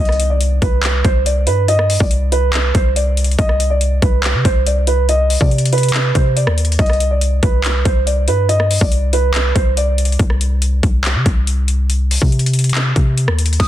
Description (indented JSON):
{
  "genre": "hip hop, trap",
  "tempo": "141 BPM",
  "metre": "4/4",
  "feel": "half-time",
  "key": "C harmonic minor",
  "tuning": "A4 = 439 Hz",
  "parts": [
    { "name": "dark grand piano", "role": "melody", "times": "0.0-10.2, 13.6-13.7 s", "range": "B4 to Eb6", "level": "-19 LUFS", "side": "right 3 dB", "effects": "low-pass filter" },
    { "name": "warm 808-style bass", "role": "bass", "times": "0.0-13.7 s", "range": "C2 to C3", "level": "-15 LUFS", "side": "equal", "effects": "none" },
    { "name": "trap drum kit", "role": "drums", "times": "0.1-13.7 s", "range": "crash cymbal, handclaps, hi-hat, kick drum, rim click", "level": "-17 LUFS", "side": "left 1 dB", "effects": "overdrive, vintage 12-bit sampler grit" }
  ],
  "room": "digital ambience",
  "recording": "dense, heavily limited modern master",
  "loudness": "-13 LUFS",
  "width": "side -12 dB against mid",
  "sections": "0.0-13.6 A section",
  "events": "none",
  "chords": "0.0 Csus2; 6.8 G/C; 10.2 N.C."
}